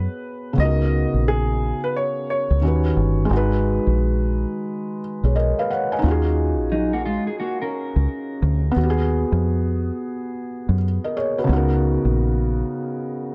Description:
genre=lo-fi hip hop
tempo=88 BPM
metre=4/4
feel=swing 64% on 16ths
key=G# dorian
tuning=A4 = 440 Hz
part: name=warm upright piano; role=melody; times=0.0-3.3 s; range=G#4 to D#5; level=-28 LUFS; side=equal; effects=none
part: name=felt-muted upright piano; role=accompaniment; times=0.0-13.3 s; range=C#3 to G#5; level=-26 LUFS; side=equal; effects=cassette tape, plate reverb
part: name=deep dub fingered electric bass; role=bass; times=0.0-12.6 s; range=G1 to F#2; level=-22 LUFS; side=equal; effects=none
part: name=mellow electric guitar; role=second line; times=6.7-8.6 s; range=F#3 to A#4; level=-28 LUFS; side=equal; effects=subtle chorus, plate reverb, tape echo
room=light reverb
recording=dark, warm production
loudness=-21 LUFS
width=mono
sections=0.0-13.3 A section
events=none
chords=0.0 G#m7; 0.6 C#13sus4; 2.6 D#7alt; 3.3 G#m7; 6.0 D#m11; 8.8 G#m7/D#; 11.5 C#13sus4

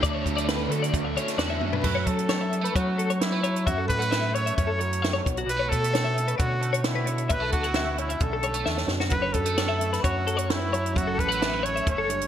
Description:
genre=math rock and midwest emo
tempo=132 BPM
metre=4/4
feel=straight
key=unclear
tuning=A4 = 440 Hz
part: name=twangy electric guitar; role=accompaniment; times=0.0-12.3 s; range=D2 to F#4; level=-33 LUFS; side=right 9 dB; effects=analog chorus
part: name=twelve-string electric guitar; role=arpeggios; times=0.0-12.3 s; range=F#4 to F#5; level=-30 LUFS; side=left 6 dB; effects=tremolo
part: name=biting overdriven guitar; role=riff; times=0.0-1.8 s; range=D3 to D4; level=-31 LUFS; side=right 1 dB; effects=none
part: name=overdriven fingered electric bass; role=bass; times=0.0-12.3 s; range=F#1 to F#3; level=-29 LUFS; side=equal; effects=none
part: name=compact cocktail drum kit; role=drums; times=0.0-12.3 s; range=crash cymbal, hi-hat, kick drum, snare drum, toms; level=-29 LUFS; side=right 1 dB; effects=gated reverb
part: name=warm trumpet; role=melody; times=1.8-12.3 s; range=E4 to C#5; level=-29 LUFS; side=equal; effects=ping-pong delay
room=light reverb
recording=bright 1980s-style digital production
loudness=-23 LUFS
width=side -10 dB against mid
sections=0.0-1.8 A section; 1.8-12.3 B section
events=drum fill 1.6, 8.7-9.1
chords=0.0 Dmaj7; 1.8 F#m7; 5.3 Bm11; 9.1 F#m7

